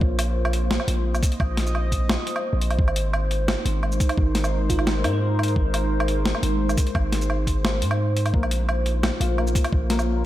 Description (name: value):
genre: half-time drum and bass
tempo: 173 BPM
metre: 4/4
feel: half-time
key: unclear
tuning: A4 = 440 Hz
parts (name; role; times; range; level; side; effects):
- dark analog pad; sustained chords; 0.0-10.3 s; Ab3 to Eb5; -28 LUFS; equal; chorus, phaser, sidechain pumping
- long sustained 808-style bass; bass; 0.0-10.3 s; Ab1 to Ab2; -23 LUFS; equal; none
- electronic kick drum; drums; 0.0-9.8 s; none; -22 LUFS; equal; none
- boom bap sampler-style drum kit; drums; 0.2-10.1 s; hi-hat, shaker, snare drum, woodblock; -27 LUFS; equal; none
- bell-like FM electric piano; melody; 4.7-5.2 s; Eb4 to F4; -33 LUFS; right 2 dB; chorus, tremolo, tape echo
- felt-muted upright piano; arpeggios; 8.3-10.3 s; Bb3 to F4; -30 LUFS; left 4 dB; vintage 12-bit sampler grit, tape echo
room: light reverb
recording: none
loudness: -20 LUFS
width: side -14 dB against mid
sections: 0.0-10.3 A section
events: none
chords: 0.0 Bbm; 2.8 Ab; 8.3 Bbm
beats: | 0.01 0.36 0.71 1.05 | 1.40 1.75 2.10 2.44 | 2.79 3.14 3.48 3.83 | 4.18 4.52 4.87 5.22 | 5.56 5.91 6.26 6.60 | 6.95 7.30 7.64 7.99 | 8.34 8.69 9.03 9.38 | 9.72 10.07